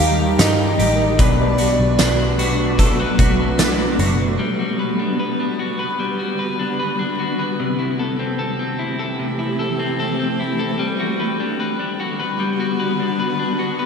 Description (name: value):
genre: dream pop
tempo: 75 BPM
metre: 4/4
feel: straight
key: G major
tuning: A4 = 440 Hz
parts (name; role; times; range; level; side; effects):
- warbly nostalgic lead; melody; 0.0-2.8 s; D5 to F5; -22 LUFS; right 1 dB; chorus, ping-pong delay
- electric guitar through a small old amp; accompaniment; 0.0-4.4 s; B2 to B4; -24 LUFS; right 3 dB; harmonic tremolo, analog chorus
- shimmering ambient pad; sustained chords; 0.0-13.9 s; B2 to G4; -23 LUFS; right 1 dB; chorus, built-in reverb
- electric guitar at the edge of break-up; arpeggios; 0.0-13.9 s; B2 to B4; -22 LUFS; left 4 dB; wide subtle chorus, ping-pong delay
- vintage muted picked electric bass; bass; 0.0-4.4 s; F#1 to G2; -21 LUFS; equal; none
- shimmering bell with halo; texture; 0.0-4.8 s; Eb4 to A5; -34 LUFS; equal; none
- oversized low-tuned drum kit; drums; 0.4-4.2 s; hi-hat, kick drum, snare drum, tambourine; -20 LUFS; equal; gated reverb
room: wet lush hall reverb, RT60 2.4 s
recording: bright 1980s-style digital production, lossy compression artefacts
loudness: -17 LUFS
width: side -6 dB against mid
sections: 0.0-4.4 A section; 4.4-13.9 B section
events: none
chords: 0.0 Eb; 1.2 Bm7; 4.4 Gmaj7; 7.6 C6; 10.8 Gmaj7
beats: 0.39 | 1.19 1.99 2.79 3.59 | 4.39 5.19 5.99 6.79 | 7.59 8.39 9.19 9.99 | 10.79 11.59 12.39 13.19